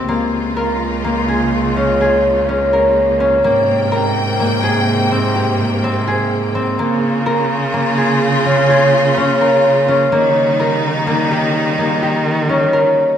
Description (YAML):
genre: contemporary instrumental, chamber music in an uneven meter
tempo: 126 BPM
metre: 7/4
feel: straight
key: unclear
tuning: A4 = 440 Hz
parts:
  - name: clear symphonic string section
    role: sustained chords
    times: 0.0-13.2 s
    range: C3 to G5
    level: -20 LUFS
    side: right 1 dB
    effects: none
  - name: concert harp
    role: arpeggios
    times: 0.0-13.2 s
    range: Bb3 to Bb4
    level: -15 LUFS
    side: equal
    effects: none
  - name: rich cello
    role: bass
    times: 0.0-13.2 s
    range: Db2 to Eb3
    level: -19 LUFS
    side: right 1 dB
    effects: none
room: moderate recital hall reverb, RT60 1.3 s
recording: minimal, uncompressed stereo recording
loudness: -13 LUFS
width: side -9 dB against mid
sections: 0.1-13.2 A section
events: none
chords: 0.1 Db6; 3.4 Abmaj9; 6.8 Db6; 10.1 Eb7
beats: | 0.09 0.57 1.05 1.53 2.01 2.49 2.97 | 3.45 3.92 4.40 4.88 5.36 5.84 6.31 | 6.79 7.27 7.74 8.22 8.69 9.17 9.64 | 10.12 10.59 11.07 11.54 12.02 12.49 12.97